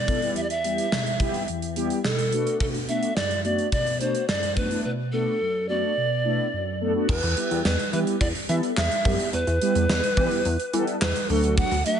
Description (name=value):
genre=synth-pop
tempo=107 BPM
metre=4/4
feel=straight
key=E minor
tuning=A4 = 445 Hz
part: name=breathy bright polished pan flute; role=melody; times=0.0-12.0 s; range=A4 to F#5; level=-26 LUFS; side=right 1 dB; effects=ping-pong delay
part: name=mellow synth brass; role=accompaniment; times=0.0-12.0 s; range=E2 to A4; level=-27 LUFS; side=left 1 dB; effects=chorus
part: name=gated 80s drum kit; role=drums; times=0.1-12.0 s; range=crash cymbal, handclaps, hi-hat, kick drum, snare drum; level=-27 LUFS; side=equal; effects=none
part: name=chorused synth bass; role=bass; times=7.1-11.8 s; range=D2 to E3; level=-25 LUFS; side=equal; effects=none
room=light reverb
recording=nothing above 10.6 kHz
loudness=-22 LUFS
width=side -8 dB against mid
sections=0.0-7.1 A section; 7.1-12.0 B section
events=none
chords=0.0 Em; 2.3 Bm7; 7.1 Em; 11.3 D